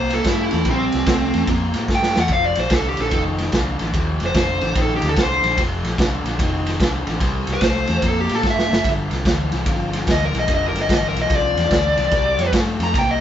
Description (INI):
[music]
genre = electric blues shuffle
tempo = 147 BPM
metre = 4/4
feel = swing 65% on 8ths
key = C mixolydian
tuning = A4 = 440 Hz
[part]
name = dark smooth lead guitar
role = melody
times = 0.0-13.2 s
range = C4 to Bb5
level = -20 LUFS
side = equal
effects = overdrive
[part]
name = raw garage guitar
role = riff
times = 0.0-13.2 s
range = F2 to Bb3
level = -24 LUFS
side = left 3 dB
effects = overdrive
[part]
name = vintage muted fingered electric bass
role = bass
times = 0.0-13.2 s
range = F1 to A2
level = -24 LUFS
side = equal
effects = none
[part]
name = raw garage drum kit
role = drums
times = 0.1-13.1 s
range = kick drum, ride cymbal, snare drum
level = -21 LUFS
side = right 1 dB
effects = none
[sound]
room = moderate studio reverb, RT60 0.6 s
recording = band playing live in one room, nothing above 7.8 kHz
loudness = -17 LUFS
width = side -10 dB against mid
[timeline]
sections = 0.0-13.2 A section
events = lead electric guitar solo 0.0-13.2; drum fill 1.9-2.3, 8.4-8.8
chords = 0.0 C7; 2.3 F7(no3); 7.2 C7; 8.8 G7(no3); 12.1 C7sus2